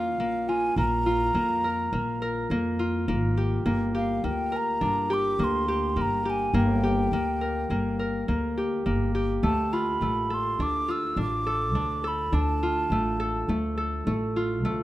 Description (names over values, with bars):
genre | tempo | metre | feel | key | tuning
contemporary instrumental, chamber music in an uneven meter | 104 BPM | 5/4 | straight | unclear | A4 = 440 Hz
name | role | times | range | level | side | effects
mellow hollow jazz flute | melody | 0.0-13.5 s | F5 to E6 | -28 LUFS | right 1 dB | none
concert harp | arpeggios | 0.0-14.8 s | A3 to Bb4 | -27 LUFS | left 1 dB | none
upright bass | bass | 0.0-14.8 s | G1 to F2 | -30 LUFS | equal | none
room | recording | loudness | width
light reverb | close, detailed microphones | -24 LUFS | side -15 dB against mid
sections
0.0-14.8 A section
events
none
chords
0.0 Bbm; 3.7 Gm; 9.4 Dm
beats
0.20 | 0.78 1.35 1.93 2.51 3.09 | 3.67 4.24 4.82 5.40 5.98 | 6.55 7.13 7.71 8.29 8.87 | 9.44 10.02 10.60 11.18 11.76 | 12.33 12.91 13.49 14.07 14.65